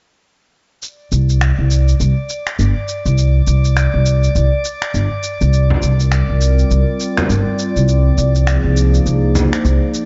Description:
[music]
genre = organic downtempo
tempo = 102 BPM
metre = 4/4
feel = swing 59% on 16ths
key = C minor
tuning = A4 = 440 Hz
[part]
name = electronic shaker and finger snaps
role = drums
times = 0.8-10.1 s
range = none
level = -26 LUFS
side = equal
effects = overdrive
[part]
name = drifting glass-harmonics texture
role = texture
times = 1.6-10.1 s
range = D5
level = -28 LUFS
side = equal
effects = chorus, built-in reverb
[part]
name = upright bass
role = bass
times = 1.1-9.8 s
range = G1 to C2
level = -16 LUFS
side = equal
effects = tube saturation
[part]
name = warbly tape-like pad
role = sustained chords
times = 5.5-10.1 s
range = F3 to D5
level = -22 LUFS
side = equal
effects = chorus, built-in reverb, vintage 12-bit sampler grit
[part]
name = frame drum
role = percussion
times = 5.7-9.5 s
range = none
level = -23 LUFS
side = equal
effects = none
[sound]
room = light reverb, small room ambience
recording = dark, warm production, nothing above 7.7 kHz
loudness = -15 LUFS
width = mono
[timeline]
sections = 0.8-10.1 A section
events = none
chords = 0.8 C5; 5.5 Bb/C; 7.9 Fm/C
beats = | 0.82 1.41 2.00 2.59 | 3.18 3.77 4.35 4.94 | 5.53 6.12 6.71 7.29 | 7.88 8.47 9.06 9.65

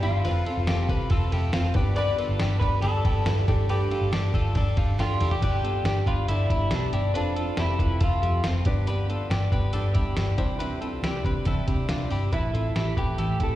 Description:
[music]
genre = jangly indie pop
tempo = 139 BPM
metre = 4/4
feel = straight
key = G mixolydian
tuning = A4 = 439 Hz
[part]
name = electric guitar through a small old amp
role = melody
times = 0.0-8.4, 12.3-13.6 s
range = D4 to D5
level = -30 LUFS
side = equal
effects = lush chorus, slapback echo
[part]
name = picked steel-string acoustic guitar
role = accompaniment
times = 0.0-13.6 s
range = G2 to B4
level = -34 LUFS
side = right 3 dB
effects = slapback echo
[part]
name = warm upright piano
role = accompaniment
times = 0.0-12.3 s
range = F3 to D5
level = -38 LUFS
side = left 2 dB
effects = slapback echo
[part]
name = twelve-string electric guitar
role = arpeggios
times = 0.0-13.6 s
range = C4 to B4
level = -33 LUFS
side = left 4 dB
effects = slapback echo
[part]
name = vintage muted picked electric bass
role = bass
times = 0.0-13.6 s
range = F1 to C3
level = -26 LUFS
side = equal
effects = none
[part]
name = lo-fi sampler-style drum kit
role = drums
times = 0.0-13.5 s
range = crash cymbal, hi-hat, kick drum, ride cymbal, snare drum, toms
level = -28 LUFS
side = equal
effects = none
[sound]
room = digital ambience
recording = live gig heard through the venue's PA, recital hall reverb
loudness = -22 LUFS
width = side -14 dB against mid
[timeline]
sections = 0.0-5.4 A section; 5.4-12.3 B section; 12.3-13.6 C section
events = drum fill 5.0-5.4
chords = 0.2 F; 1.8 G; 3.5 Gsus2; 5.4 G; 7.1 F; 8.7 G; 10.4 Cadd9; 12.3 Am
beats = | 0.25 0.68 1.11 1.54 | 1.97 2.40 2.83 3.26 | 3.69 4.12 4.56 4.99 | 5.42 5.85 6.28 6.71 | 7.14 7.58 8.01 8.44 | 8.87 9.30 9.73 10.17 | 10.60 11.03 11.46 11.89 | 12.33 12.76 13.19

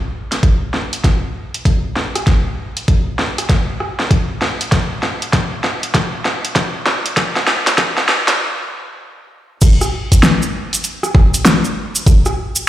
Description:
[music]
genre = glitch hop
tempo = 98 BPM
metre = 4/4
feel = swing 63% on 16ths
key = none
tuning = none
[part]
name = pop drum kit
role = drums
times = 0.3-12.3 s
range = crash cymbal, hi-hat, rim click, snare drum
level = -17 LUFS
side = equal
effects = overdrive, high-pass filter on snare, high-pass filter on hats, high-pass filter on cymbals, high-pass filter on room
[part]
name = electronic kick drum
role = drums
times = 0.4-12.2 s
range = none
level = -12 LUFS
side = equal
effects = overdrive
[part]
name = cabasa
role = percussion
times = 9.6-12.7 s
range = none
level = -22 LUFS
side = right 2 dB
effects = none
[sound]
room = moderate plate reverb, RT60 2.5 s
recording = played on a big sound system in a bare room, large studio reverb, high-pass filter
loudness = -13 LUFS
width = side -13 dB against mid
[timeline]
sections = 0.0-9.6 A section; 9.6-12.7 B section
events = build-up 0.0-9.6; drum fill 0.0-8.4; filter sweep 0.0-9.6; stop 8.4-9.6; drop 9.6-12.7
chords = none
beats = 0.43 1.04 1.66 | 2.27 2.88 3.49 4.11 | 4.72 5.33 5.94 6.55 | 7.17 7.78 8.39 9.00 | 9.62 10.23 10.84 11.45 | 12.07

